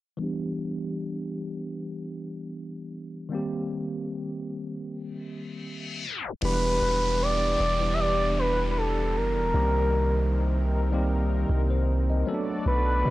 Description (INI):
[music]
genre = R&B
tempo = 77 BPM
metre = 4/4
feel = swing 54% on 16ths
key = E minor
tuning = A4 = 440 Hz
[part]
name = tine electric piano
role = accompaniment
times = 0.2-13.1 s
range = Eb3 to Eb5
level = -31 LUFS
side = equal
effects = slow stereo tremolo, low-pass filter
[part]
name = reverse cymbal and downlifter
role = sound effects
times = 5.3-12.7 s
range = none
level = -37 LUFS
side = left 1 dB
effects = none
[part]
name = gliding portamento lead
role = melody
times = 6.4-13.1 s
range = A4 to E5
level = -26 LUFS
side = equal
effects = chorus
[part]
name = warm analog pad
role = sustained chords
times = 6.4-13.1 s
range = C3 to D5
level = -34 LUFS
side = left 1 dB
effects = chorus, tremolo
[part]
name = long sustained 808-style bass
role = bass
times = 6.4-13.1 s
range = E1 to B2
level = -26 LUFS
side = equal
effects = none
[sound]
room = little or no reverb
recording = dry, gritty hardware recording, transformer saturation, tape stop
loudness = -24 LUFS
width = side -17 dB against mid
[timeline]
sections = 0.2-6.4 A section; 6.4-13.1 B section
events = reverse cymbal 5.3-6.4; tape stop 6.0-6.4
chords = 0.2 Em7; 3.3 Cm7; 6.0 N.C.; 6.4 Em7; 9.5 Cm7; 12.3 Bm7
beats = | 0.19 0.97 1.75 2.53 | 3.31 4.09 4.87 5.65 | 6.43 7.21 7.99 8.76 | 9.54 10.32 11.10 11.88 | 12.66